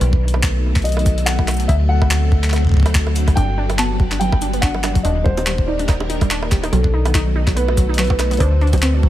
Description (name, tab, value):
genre	IDM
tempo	143 BPM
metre	4/4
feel	swing 56% on 16ths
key	unclear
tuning	A4 = 440 Hz
part	felt-muted upright piano	melody	0.0-9.1 s	A4 to A5	-25 LUFS	equal	vintage 12-bit sampler grit, dub echo
part	soft string machine	sustained chords	0.0-9.1 s	D3 to B4	-25 LUFS	left 1 dB	ensemble chorus, sidechain pumping
part	metallic FM bass	bass	0.0-9.1 s	Eb1 to D2	-18 LUFS	equal	none
part	jungle sampler-style drum kit	drums	0.0-8.9 s	bongos, cabasa, handclaps, hi-hat	-24 LUFS	right 1 dB	dub echo
part	electronic kick drum	drums	0.1-9.1 s	none	-16 LUFS	equal	none
part	warbly dusty pluck	arpeggios	3.4-9.1 s	F#3 to Eb4	-24 LUFS	right 2 dB	chorus, tape echo
room	little or no reverb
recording	echo-heavy mix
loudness	-14 LUFS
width	side -13 dB against mid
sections	0.0-9.1 A section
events	none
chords	0.0 B7; 1.7 D7; 3.4 Gmaj7; 5.0 Ebmaj7; 6.7 B7; 8.4 D7